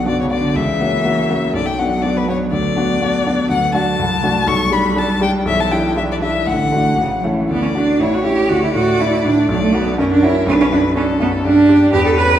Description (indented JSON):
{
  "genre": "quick classical-period movement for piano trio",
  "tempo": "122 BPM",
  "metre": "2/4",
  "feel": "straight",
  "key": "B minor, D major from 3.5 s",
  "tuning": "A4 = 440 Hz",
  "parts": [
    { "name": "rich violin", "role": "melody", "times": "0.0-12.4 s", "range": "G4 to C#6", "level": "-20 LUFS", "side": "left 5 dB", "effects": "none" },
    { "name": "rich cello", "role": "second line", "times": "0.0-12.4 s", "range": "C#3 to B4", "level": "-17 LUFS", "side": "right 3 dB", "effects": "none" },
    { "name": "warm grand piano", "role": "accompaniment", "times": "0.0-12.4 s", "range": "A1 to G4", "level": "-18 LUFS", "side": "left 1 dB", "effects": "none" }
  ],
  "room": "wet recital hall reverb, RT60 1.7 s",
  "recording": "heard from further back in the room",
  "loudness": "-13 LUFS",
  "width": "side -10 dB against mid",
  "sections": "0.0-7.5 A section; 7.5-12.4 B section",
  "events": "none",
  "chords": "0.0 Bm; 0.6 F#7/C#; 1.6 Bm; 2.5 Bm/D; 3.5 D; 4.0 D7/C; 4.5 G/B; 5.5 Em7/B; 6.5 D/A; 7.0 A; 7.5 D; 8.0 A7; 8.5 D5; 9.5 Bm; 10.0 F#7; 10.5 Bm; 11.4 G5"
}